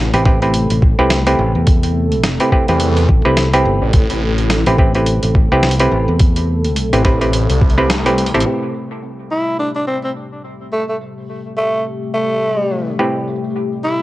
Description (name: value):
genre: glitch hop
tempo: 106 BPM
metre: 4/4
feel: swing 58% on 16ths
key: A minor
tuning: A4 = 441 Hz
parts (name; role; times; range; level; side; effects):
- warbly tape-like pad; sustained chords; 0.0-14.0 s; C3 to A4; -23 LUFS; left 1 dB; chorus, built-in reverb, sidechain pumping, cassette tape
- muted clav; stabs; 0.0-14.0 s; A2 to B4; -17 LUFS; right 1 dB; sidechain pumping, low-pass filter, cassette tape, analog delay
- phased detuned saw bass; bass; 0.0-8.4 s; A1 to E2; -16 LUFS; equal; phaser
- fingered electric bass; bass; 0.1-6.9 s; G1 to E2; -17 LUFS; equal; none
- boom bap sampler-style drum kit; drums; 0.1-14.0 s; crash cymbal, hi-hat, snare drum, tambourine; -21 LUFS; equal; low-pass filter on hats, cassette tape, low-pass filter on snare, low-pass filter on cymbals, low-pass filter on perc
- electronic kick drum; drums; 0.3-7.7 s; none; -12 LUFS; equal; cassette tape
- growling tenor saxophone; melody; 9.3-14.0 s; A3 to E4; -19 LUFS; equal; vintage 12-bit sampler grit, cassette tape, analog delay
room: light reverb, digital ambience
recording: home recording on cassette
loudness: -13 LUFS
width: side -17 dB against mid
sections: 0.0-8.5 A section; 8.5-14.0 B section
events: band accent 7.9; drum fill 8.2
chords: 0.0 Am7